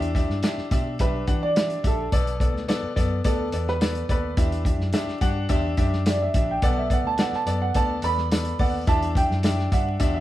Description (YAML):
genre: uptempo 1960s-style soul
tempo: 106 BPM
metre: 4/4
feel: straight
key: unclear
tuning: A4 = 440 Hz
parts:
  - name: clear grand piano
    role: accompaniment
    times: 0.0-10.2 s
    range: B2 to F#5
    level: -28 LUFS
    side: left 3 dB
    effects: none
  - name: vintage muted fingered electric bass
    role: bass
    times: 0.0-10.2 s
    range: A#1 to E3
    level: -28 LUFS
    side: equal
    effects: none
  - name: warm soul drum kit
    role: drums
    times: 0.0-10.1 s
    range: hi-hat, kick drum, snare drum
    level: -24 LUFS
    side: equal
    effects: none
  - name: dark grand piano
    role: melody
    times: 1.0-10.2 s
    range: A4 to B5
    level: -27 LUFS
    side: right 3 dB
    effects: none
room: moderate stone room reverb, RT60 0.9 s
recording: band playing live in one room, vinyl crackle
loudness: -21 LUFS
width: side -14 dB against mid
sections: 0.0-10.2 A section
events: grand piano solo 0.0-10.2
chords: 0.0 Em7; 2.1 Bm7; 4.4 Em7; 6.6 Bm7; 8.9 Em7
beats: 0.43 0.99 1.56 | 2.12 2.68 3.25 3.81 | 4.37 4.93 5.50 6.06 | 6.62 7.19 7.75 8.31 | 8.88 9.44 10.01